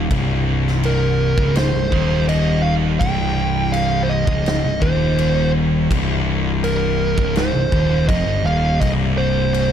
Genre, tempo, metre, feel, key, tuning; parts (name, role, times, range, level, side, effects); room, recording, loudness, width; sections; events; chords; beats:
stoner and doom metal; 83 BPM; 4/4; straight; C minor; A4 = 440 Hz
thick fuzz guitar; riff; 0.0-9.7 s; C2 to G2; -21 LUFS; left 9 dB; distortion
thick fuzz guitar; riff; 0.0-9.7 s; C2 to G2; -23 LUFS; right 9 dB; distortion
growling picked electric bass; bass; 0.0-9.7 s; C1 to G1; -22 LUFS; equal; overdrive
big rock drum kit; drums; 0.1-9.7 s; crash cymbal, kick drum, snare drum; -24 LUFS; equal
fuzz lead guitar; melody; 0.9-9.7 s; Bb4 to G5; -22 LUFS; right 4 dB; distortion, analog delay
light reverb; dark, warm production; -16 LUFS; side -9 dB against mid
0.0-9.7 A section
0.0 Cm
| 0.11 0.83 1.56 2.28 | 3.01 3.73 4.46 5.18 | 5.91 6.64 7.36 8.09 | 8.81 9.54